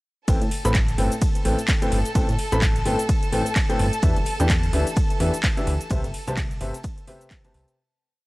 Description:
piano house; 128 BPM; 4/4; swing 58% on 16ths; A minor; A4 = 440 Hz
dark studio violin section; sustained chords; 0.3-7.8 s; A4 to A5; -32 LUFS; left 1 dB; sidechain pumping
clear upright piano; riff; 0.3-7.8 s; A2 to B5; -26 LUFS; left 1 dB; sidechain pumping, tape echo
plucky analog bass; bass; 0.3-7.7 s; E1 to A2; -24 LUFS; equal; sidechain pumping
electronic kick drum; drums; 0.3-7.4 s; -23 LUFS; equal; overdrive
house drum kit; drums; 0.3-7.8 s; handclaps, hi-hat, ride cymbal, shaker; -30 LUFS; equal; overdrive
soft-mallet drum kit; drums; 0.3-7.7 s; hi-hat, snare drum; -45 LUFS; left 2 dB
studio ambience; dry, gritty hardware recording, cassette tape; -20 LUFS; side -21 dB against mid
0.3-7.8 drop
drop 0.3-7.8; fade-out 5.3-7.8
0.3 Am9; 4.0 Em7; 5.9 Cmaj7

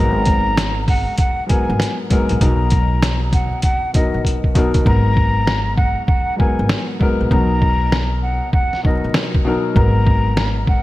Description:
hip hop, boom-bap hip-hop; 98 BPM; 4/4; swing 63% on 16ths; G# minor; A4 = 440 Hz
breathy mellow silver concert flute; melody; 0.0-10.8 s; D#5 to A#5; -23 LUFS; equal; high-pass filter, low-pass filter, digital delay
dark grand piano; accompaniment; 0.0-10.8 s; G#2 to A#4; -21 LUFS; left 2 dB; cassette tape, high-pass filter, low-pass filter
upright bass; bass; 0.0-10.8 s; G#1 to B1; -19 LUFS; equal
trip hop sampler-style drum kit; drums; 0.3-10.8 s; hi-hat, kick drum, snare drum; -17 LUFS; equal; gated reverb
light reverb, small room ambience; bright 1980s-style digital production, vinyl crackle; -14 LUFS; side -17 dB against mid
0.0-10.8 A section
drum fill 4.2-4.9; hi-hats muted 4.9-10.8
0.0 G#m9; 2.4 Bmaj7; 4.9 G#m9; 7.3 Bmaj7; 9.8 G#m9

